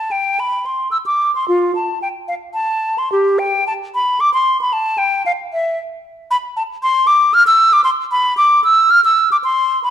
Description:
classical, baroque-style fantasia for unaccompanied flute; 113 BPM; 3/4; rubato; C major; A4 = 441 Hz
hollow concert flute; solo; 0.0-9.9 s; F4 to F6; -13 LUFS; equal
moderate recital hall reverb, RT60 1.5 s; dark, warm production; -13 LUFS; side -10 dB against mid
0.0-9.9 A section

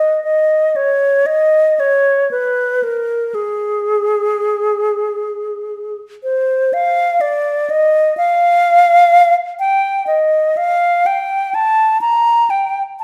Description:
classical, free, expressive piece for unaccompanied alto flute; 57-65 BPM; 4/4; rubato; G# minor; A4 = 440 Hz
alto flute; solo; 0.0-13.0 s; G#4 to Bb5; -15 LUFS; equal
wet recital hall reverb, RT60 1.3 s; -15 LUFS; mono
0.0-13.0 A section

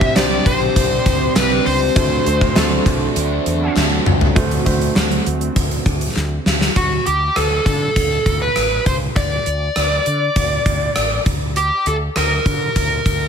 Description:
1980s-style pop; 100 BPM; 4/4; straight; D mixolydian; A4 = 435 Hz
dark smooth lead guitar; melody; 0.0-13.3 s; F#4 to E5; -19 LUFS; left 1 dB; overdrive
crunchy overdriven guitar; accompaniment; 0.0-4.9 s; C3 to D4; -27 LUFS; right 1 dB; lush chorus
warm grand piano; accompaniment; 0.0-6.8 s; C3 to C5; -24 LUFS; right 3 dB
chorused pulse-width pad; sustained chords; 0.0-6.7 s; D3 to G4; -24 LUFS; right 2 dB
fretless electric bass; bass; 0.0-13.3 s; A1 to D3; -22 LUFS; equal; analog chorus
gated 80s drum kit; drums; 0.0-13.2 s; hi-hat, kick drum, rim click, snare drum, tambourine, toms; -18 LUFS; equal; gated reverb
group handclap; percussion; 0.2-6.3 s; -34 LUFS; left 9 dB
light reverb, small room ambience; -14 LUFS; side -7 dB against mid
0.0-4.4 A section; 4.4-6.8 B section; 6.8-13.3 C section
drum fill 3.8-4.4, 6.2-6.8
0.0 Csus2; 2.0 D7; 6.8 D5; 11.3 Bmmaj7 (rootless)

